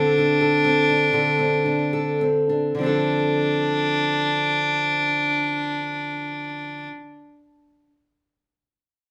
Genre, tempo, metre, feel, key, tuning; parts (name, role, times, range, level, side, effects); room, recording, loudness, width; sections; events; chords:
celtic folk, Celtic slow air; 50-70 BPM; 3/4; rubato; D minor; A4 = 439 Hz
bright fiddle; melody; 0.0-6.9 s; D4; -24 LUFS; equal
fingerpicked steel-string acoustic guitar; accompaniment; 0.0-7.0 s; D3 to A4; -24 LUFS; equal
moderate large studio reverb, RT60 1.0 s; band playing live in one room; -21 LUFS; mono
0.0-2.8 A section; 2.8-6.2 B section
slowing down 0.0-2.8
0.0 D5; 2.8 Dm7